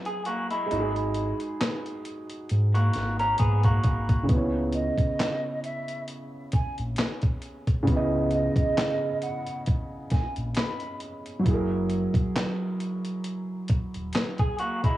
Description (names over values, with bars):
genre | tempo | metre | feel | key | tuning
lo-fi hip hop | 67 BPM | 4/4 | swing 55% on 16ths | C# dorian | A4 = 440 Hz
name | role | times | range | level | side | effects
felt-muted upright piano | accompaniment | 0.0-15.0 s | C#3 to D#5 | -30 LUFS | right 1 dB | low-pass filter, cassette tape
electric guitar through a small old amp | second line | 0.1-4.3, 14.4-15.0 s | G#3 to A#4 | -29 LUFS | equal | low-pass filter, cassette tape, analog delay
dusty soul sampler-style drum kit | drums | 0.1-15.0 s | handclaps, hi-hat, kick drum, snare drum | -26 LUFS | equal | cassette tape
sub bass with octave | bass | 0.7-14.1 s | D#1 to G#2 | -27 LUFS | equal | none
breathy mellow silver concert flute | melody | 4.7-11.0 s | D#5 to B5 | -32 LUFS | right 2 dB | low-pass filter, cassette tape, analog delay
room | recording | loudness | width
light reverb, digital ambience | home recording on cassette, small room ambience | -24 LUFS | side -15 dB against mid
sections
0.0-15.0 A section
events
break 0.0-4.3; drum fill 3.4-4.3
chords
0.0 F#9; 0.7 G#5; 4.3 C#m9; 11.5 F#9